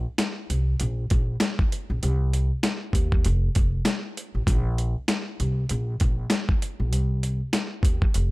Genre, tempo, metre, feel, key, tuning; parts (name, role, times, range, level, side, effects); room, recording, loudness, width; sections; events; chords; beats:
hip hop, boom-bap hip-hop; 98 BPM; 4/4; swing 56% on 16ths; C dorian; A4 = 439 Hz
upright bass; bass; 0.0-8.3 s; F1 to Eb2; -24 LUFS; equal
dusty soul sampler-style drum kit; drums; 0.2-8.3 s; hi-hat, kick drum, snare drum; -23 LUFS; equal; overdrive
little or no reverb; -22 LUFS; side -21 dB against mid
0.0-8.3 A section
0.19 0.80 1.41 | 2.02 2.63 3.25 3.86 | 4.47 5.08 5.70 6.31 | 6.92 7.53 8.14